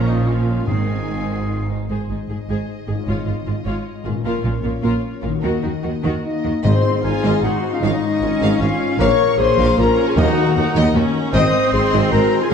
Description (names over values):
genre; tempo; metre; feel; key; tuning
cinematic, heroic adventure film score; 153 BPM; 3/4; straight; Ab mixolydian; A4 = 440 Hz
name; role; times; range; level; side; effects
warm symphonic violin section; melody; 0.0-12.5 s; Db5 to Eb6; -32 LUFS; left 6 dB; none
mellow clarinet; second line; 0.0-1.7, 6.2-12.5 s; Ab3 to C5; -25 LUFS; right 1 dB; none
rich symphonic violin section; second line; 0.0-12.5 s; Db4 to Db6; -29 LUFS; left 3 dB; none
silver concert flute; second line; 0.0-1.7, 6.2-12.5 s; Eb5 to C7; -28 LUFS; left 1 dB; none
warm oboe; second line; 0.0-1.7 s; Eb4 to Ab4; -34 LUFS; right 1 dB; none
clear symphonic viola section; accompaniment; 0.0-12.5 s; Eb3 to Ab4; -27 LUFS; right 1 dB; none
bright trombone section; sustained chords; 0.0-1.7, 6.6-12.5 s; Bb2 to Eb4; -31 LUFS; right 4 dB; none
mellow French horn section; sustained chords; 0.0-1.7, 6.2-12.5 s; C4 to Eb5; -21 LUFS; left 6 dB; none
concert harp; arpeggios; 0.0-12.5 s; Ab2 to Eb5; -27 LUFS; left 7 dB; none
clear symphonic cello section; bass; 0.0-12.5 s; Eb2 to Eb3; -24 LUFS; right 2 dB; none
rich symphonic double bass section; bass; 0.0-12.5 s; Ab1 to Eb2; -23 LUFS; right 2 dB; none
timpani; percussion; 0.7-3.6, 6.6-7.2, 10.2-10.7 s; Ab2 to Eb3; -24 LUFS; equal; none
warm tuba; bass; 6.6-12.5 s; Ab1 to Eb2; -24 LUFS; right 3 dB; none
room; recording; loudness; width
wet scoring stage reverb, RT60 2.0 s; dark, warm production; -16 LUFS; side -7 dB against mid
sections
0.0-1.9 A section; 1.9-6.6 B section; 6.6-12.5 C section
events
none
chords
0.0 Bbm; 0.7 Ab; 3.1 Dbadd9/Ab; 4.2 Bbm; 5.4 Ebm; 6.6 Ab; 7.8 Dbadd9/Ab; 9.0 Bbm; 10.2 Ebm; 11.3 Ab